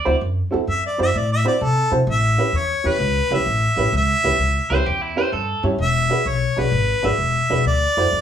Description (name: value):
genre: blues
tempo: 129 BPM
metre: 4/4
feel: swing 68% on 8ths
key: A mixolydian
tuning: A4 = 438 Hz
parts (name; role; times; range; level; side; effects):
- electric guitar at the edge of break-up; second line; 0.0-0.2, 4.7-5.6 s; E4 to D5; -24 LUFS; right 2 dB; slapback echo
- dark upright piano; accompaniment; 0.1-8.1 s; C4 to D5; -23 LUFS; right 3 dB; none
- upright bass; bass; 0.1-8.2 s; E1 to C3; -22 LUFS; left 1 dB; none
- clear harmonica; melody; 0.7-8.2 s; A4 to E5; -20 LUFS; equal; slapback echo
room: light reverb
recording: small room ambience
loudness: -17 LUFS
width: side -9 dB against mid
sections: 0.0-8.2 A section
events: none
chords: 0.0 D9; 2.1 A7; 5.8 E9; 7.7 D9